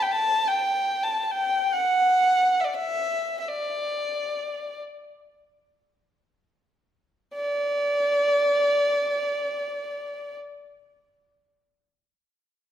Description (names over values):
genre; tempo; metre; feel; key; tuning
Arabic maqam ensemble; free time; none; none; D maqam ajam; A4 = 440 Hz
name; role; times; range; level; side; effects
dark violin; solo; 0.0-10.4 s; D5 to A5; -22 LUFS; equal; none
room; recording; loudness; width
wet recital hall reverb, RT60 1.7 s; minimal, uncompressed stereo recording; -22 LUFS; side -10 dB against mid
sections
0.0-7.3 A section; 7.3-12.5 B section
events
slowing down 2.8-7.3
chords
none